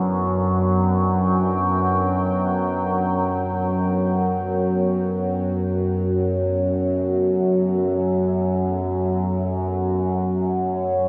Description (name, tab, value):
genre	dark ambient drone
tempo	free time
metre	none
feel	none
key	unclear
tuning	A4 = 440 Hz
part	deep dark ambient pad	sustained chords	0.0-11.1 s	F#3 to G5	-32 LUFS	equal	chorus, built-in reverb
part	overtone-sweeping drone	drone	0.0-11.1 s	F#2 to F#3	-22 LUFS	equal	chorus, built-in reverb
part	quartz singing bowl	texture	0.0-11.1 s	none	barely audible	none	none
part	mellow horn-like synth lead	melody	10.7-11.1 s	C#5	-24 LUFS	equal	phaser, subtle chorus
room	wet huge ambient reverb, RT60 7.6 s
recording	none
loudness	-22 LUFS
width	mono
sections	0.0-11.1 A section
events	fade-out on ambient pad 0.0-11.1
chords	0.0 G/F#